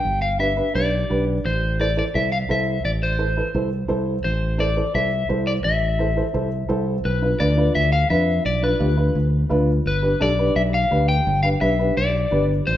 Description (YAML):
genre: latin, cumbia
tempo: 171 BPM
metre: 4/4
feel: straight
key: unclear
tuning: A4 = 438 Hz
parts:
  - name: electric guitar at the edge of break-up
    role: melody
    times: 0.0-12.8 s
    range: B4 to G5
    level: -23 LUFS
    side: left 2 dB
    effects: spring reverb, slapback echo
  - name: fingered electric bass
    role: bass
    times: 0.0-12.8 s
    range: G1 to F2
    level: -22 LUFS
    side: equal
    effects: none
  - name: dark upright piano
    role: accompaniment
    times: 0.4-12.5 s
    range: D4 to C5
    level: -24 LUFS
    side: right 1 dB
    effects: none
room: moderate large studio reverb, RT60 1.2 s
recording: heard from further back in the room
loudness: -18 LUFS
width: side -12 dB against mid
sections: 0.0-7.0 A section; 7.0-12.8 B section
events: none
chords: 0.0 G; 1.4 Am; 7.0 Bdim; 9.9 G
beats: | 0.05 0.40 0.75 1.10 | 1.45 1.80 2.15 2.50 | 2.85 3.19 3.54 3.90 | 4.25 4.59 4.95 5.30 | 5.65 6.00 6.35 6.70 | 7.05 7.40 7.75 8.10 | 8.45 8.80 9.16 9.51 | 9.86 10.21 10.56 10.91 | 11.26 11.61 11.96 12.31 | 12.66